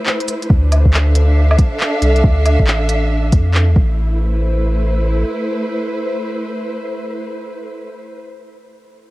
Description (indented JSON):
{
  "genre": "future garage",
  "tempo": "138 BPM",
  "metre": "4/4",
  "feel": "swing 64% on 16ths",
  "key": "A minor",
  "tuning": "A4 = 440 Hz",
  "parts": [
    { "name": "warm symphonic string section", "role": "sustained chords", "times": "0.0-8.2 s", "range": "A3 to F5", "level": "-21 LUFS", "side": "right 1 dB", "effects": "sidechain pumping" },
    { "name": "organic electronic drum kit", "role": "drums", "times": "0.1-3.7 s", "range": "cabasa, handclaps, hi-hat, woodblock", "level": "-20 LUFS", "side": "equal", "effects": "studio reverb" },
    { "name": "soft dub sub bass", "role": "bass", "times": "0.5-5.2 s", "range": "A1 to F2", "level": "-14 LUFS", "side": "equal", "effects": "sidechain pumping" },
    { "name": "electronic kick drum", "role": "drums", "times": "0.5-3.9 s", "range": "none", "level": "-12 LUFS", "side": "equal", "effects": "studio reverb" }
  ],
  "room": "light reverb, digital ambience",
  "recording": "cassette tape",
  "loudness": "-13 LUFS",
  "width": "side -18 dB against mid",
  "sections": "0.5-4.0 A section; 4.0-7.5 B section",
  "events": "break 0.0-0.5",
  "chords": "0.5 Dm9; 3.8 A5; 4.0 Am",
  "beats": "0.06 | 0.50 0.93 1.37 1.80 | 2.24 2.67 3.11 3.54 | 3.98 4.41 4.85 5.28 | 5.72 6.15 6.59 7.02"
}